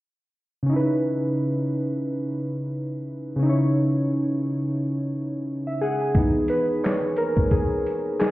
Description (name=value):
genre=lo-fi hip hop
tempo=88 BPM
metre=4/4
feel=swing 57% on 16ths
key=C# minor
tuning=A4 = 440 Hz
part: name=warm analog keys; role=accompaniment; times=0.6-8.3 s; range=C#3 to G#5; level=-22 LUFS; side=equal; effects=chorus, cassette tape, low-pass filter, plate reverb
part: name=boom bap sampler-style drum kit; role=drums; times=6.1-8.3 s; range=handclaps, hi-hat, kick drum, shaker, snare drum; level=-22 LUFS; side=equal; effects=none
room=moderate studio ambience, RT60 0.5 s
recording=heard muffled through a wall, stone room reverb, EQ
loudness=-22 LUFS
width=side -17 dB against mid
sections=0.7-6.1 A section; 6.1-8.3 B section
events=synth keys solo 6.1-8.3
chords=0.7 C#m7; 6.1 Emaj7#11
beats=| 0.69 1.38 2.06 2.74 | 3.42 4.10 4.78 5.47 | 6.15 6.83 7.51 8.19